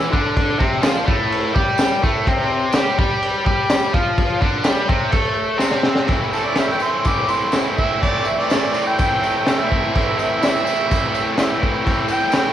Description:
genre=garage rock duo or trio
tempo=125 BPM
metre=4/4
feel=straight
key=A minor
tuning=A4 = 439 Hz
part: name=biting overdriven guitar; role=riff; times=0.0-12.5 s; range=A2 to A4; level=-19 LUFS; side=equal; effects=none
part: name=crunchy breakbeat drum kit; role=drums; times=0.1-12.5 s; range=crash cymbal, kick drum, snare drum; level=-20 LUFS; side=equal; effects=none
part: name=tambourine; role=percussion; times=0.8-12.4 s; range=none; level=-38 LUFS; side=left 5 dB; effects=none
part: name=warm harmonica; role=melody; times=6.3-12.5 s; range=A4 to D6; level=-21 LUFS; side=right 2 dB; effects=overdrive
room=moderate large studio reverb, RT60 1.4 s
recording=band playing live in one room, cassette tape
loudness=-16 LUFS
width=side -11 dB against mid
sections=0.0-6.1 A section; 6.1-12.5 B section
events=drum fill 5.6-6.1; harmonica solo 6.1-12.5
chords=0.0 Am; 2.3 C5; 6.1 Am

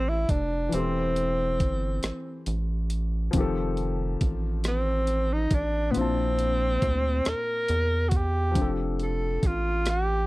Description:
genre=slow six-eight R&B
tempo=46 BPM (dotted quarters)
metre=6/8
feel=straight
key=F major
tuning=A4 = 440 Hz
part: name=breathy tenor saxophone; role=melody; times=0.0-10.3 s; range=B3 to Bb4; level=-27 LUFS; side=equal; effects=slapback echo
part: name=warm grand piano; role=accompaniment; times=0.0-10.3 s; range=Bb2 to A5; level=-32 LUFS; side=left 4 dB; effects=none
part: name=rubbery square bass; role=bass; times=0.0-10.3 s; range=E1 to E2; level=-28 LUFS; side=equal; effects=none
part: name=dusty soul sampler-style drum kit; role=drums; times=0.3-10.1 s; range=hi-hat, kick drum, rim click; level=-27 LUFS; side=equal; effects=none
room=little or no reverb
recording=dry, close 1970s-style studio recording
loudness=-24 LUFS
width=side -20 dB against mid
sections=0.0-10.3 A section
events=none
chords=0.0 F69; 0.7 Am7/E; 3.3 F9; 5.9 Bbmaj9#11; 8.6 F69

